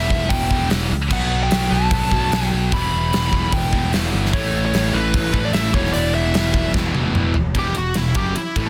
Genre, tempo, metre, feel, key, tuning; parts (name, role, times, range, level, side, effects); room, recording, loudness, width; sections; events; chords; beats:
hard rock; 149 BPM; 4/4; straight; E dorian; A4 = 439 Hz
dark smooth lead guitar; melody; 0.0-8.7 s; E4 to B5; -26 LUFS; equal; overdrive, analog delay
high-gain distorted guitar; riff; 0.0-8.7 s; E2 to B3; -28 LUFS; equal; distortion
overdriven semi-hollow guitar; riff; 0.0-8.7 s; E2 to B3; -28 LUFS; equal; spring reverb
modern bright picked electric bass; bass; 0.0-8.7 s; E1 to C#2; -25 LUFS; equal
gated 80s drum kit; drums; 0.1-8.7 s; crash cymbal, hi-hat, kick drum, ride cymbal, snare drum, toms; -24 LUFS; equal
distorted electric guitar; riff; 1.1-8.7 s; E2 to E4; -32 LUFS; equal
light reverb, studio reverb; dense, heavily limited modern master; -19 LUFS; mono
0.0-7.6 A section; 7.6-8.7 B section
drum fill 6.7-7.6
0.0 Em; 1.1 Bm; 2.7 Em; 4.3 A; 5.7 Em
0.31 0.71 | 1.11 1.52 1.92 2.32 | 2.72 3.13 3.53 3.93 | 4.33 4.74 5.14 5.54 | 5.94 6.35 6.75 7.15 | 7.55 7.96 8.36